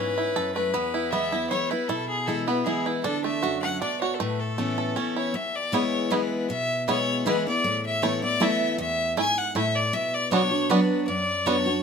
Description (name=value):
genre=bluegrass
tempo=157 BPM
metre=3/4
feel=straight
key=A major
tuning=A4 = 439 Hz
part: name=bluegrass banjo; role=melody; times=0.0-11.6 s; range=E3 to A4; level=-28 LUFS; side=right 6 dB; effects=none
part: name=clear fiddle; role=melody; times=0.0-11.8 s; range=G#4 to G#5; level=-26 LUFS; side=left 3 dB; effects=none
part: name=picked steel-string acoustic guitar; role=accompaniment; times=0.0-11.8 s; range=E2 to F#4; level=-27 LUFS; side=left 1 dB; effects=none
room=moderate studio reverb, RT60 0.8 s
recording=minimal, uncompressed stereo recording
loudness=-23 LUFS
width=side -6 dB against mid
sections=0.0-5.3 A section; 5.3-11.8 B section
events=none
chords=0.0 Aadd9; 0.7 E; 3.0 D; 4.2 Aadd9; 5.3 E; 7.6 Asus2; 9.9 Bm